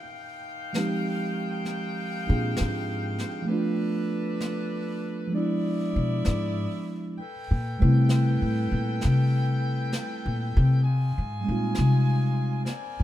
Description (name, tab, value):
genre	jazz ballad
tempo	66 BPM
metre	4/4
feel	swing 69% on 8ths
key	unclear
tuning	A4 = 440 Hz
part	edgy saxophone section	sustained chords	0.0-13.0 s	Eb3 to Ab5	-35 LUFS	left 3 dB	none
part	mellow tine electric piano	accompaniment	0.7-12.7 s	F3 to B4	-28 LUFS	right 2 dB	none
part	brushed snare drum and snare drum	drums	0.7-13.0 s	none	-37 LUFS	equal	none
part	upright bass	bass	2.3-13.0 s	Ab2 to C3	-23 LUFS	left 1 dB	none
room	little or no reverb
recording	minimal, uncompressed stereo recording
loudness	-24 LUFS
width	side -13 dB against mid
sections	0.0-13.0 A section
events	upright bass solo 0.0-13.0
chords	0.0 Fm9; 3.5 Bm7b5; 5.3 E7b9; 7.2 Am9; 10.8 Fm7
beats	0.75 1.66 2.58 | 3.50 4.41 5.33 6.26 | 7.18 8.10 9.02 9.93 | 10.84 11.76 12.67